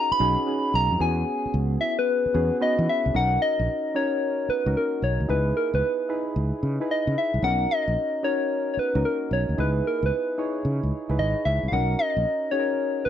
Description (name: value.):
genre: R&B, new jack swing.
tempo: 112 BPM.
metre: 4/4.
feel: swing 66% on 16ths.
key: B major.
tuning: A4 = 440 Hz.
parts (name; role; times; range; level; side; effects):
soft struck synth lead; melody; 0.0-13.1 s; A#4 to B5; -24 LUFS; left 2 dB; chorus, slapback echo.
soft electric-piano-like synth keys; accompaniment; 0.0-13.1 s; B3 to C#5; -29 LUFS; right 2 dB; chorus.
fretless electric bass; bass; 0.1-13.1 s; G#1 to E3; -25 LUFS; equal; none.
room: light reverb.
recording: dry, close 1970s-style studio recording.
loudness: -22 LUFS.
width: side -10 dB against mid.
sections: 0.0-3.1 A section; 3.1-13.1 B section.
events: none.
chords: 0.0 B69; 1.0 E6; 3.1 Bmaj7; 5.3 C#m7; 7.4 Bmaj7; 9.6 C#m7; 11.7 Bmaj7.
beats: 0.47 | 1.00 1.54 2.08 2.61 | 3.15 3.68 4.22 4.75 | 5.29 5.83 6.36 6.90 | 7.43 7.97 8.51 9.04 | 9.58 10.11 10.65 11.18 | 11.72 12.26 12.79.